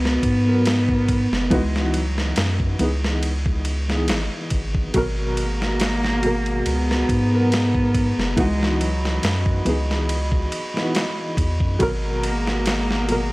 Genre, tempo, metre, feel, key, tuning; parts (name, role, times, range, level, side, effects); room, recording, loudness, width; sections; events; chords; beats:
trip hop; 70 BPM; 4/4; swing 54% on 16ths; G# minor; A4 = 439 Hz
warm cello; melody; 0.0-13.3 s; F#3 to B3; -23 LUFS; equal; vintage 12-bit sampler grit, tape echo
dark upright piano; accompaniment; 0.0-13.3 s; B2 to A#4; -26 LUFS; equal; tremolo
soft dub sub bass; bass; 0.0-13.3 s; F#1 to G#2; -23 LUFS; equal
dusty soul sampler-style drum kit; drums; 0.1-13.3 s; kick drum, ride cymbal, snare drum; -25 LUFS; equal
dark analog pad; sustained chords; 4.9-13.3 s; G#3 to B5; -31 LUFS; equal; chorus
little or no reverb; dry, gritty hardware recording, vinyl crackle; -18 LUFS; side -22 dB against mid
0.0-13.3 A section
0.0 G#m9; 1.5 C#m11; 4.9 G#m9; 8.4 C#m11; 11.8 G#m9
0.66 | 1.52 2.38 3.23 4.09 | 4.95 5.80 6.66 7.52 | 8.38 9.23 10.09 10.95 | 11.80 12.66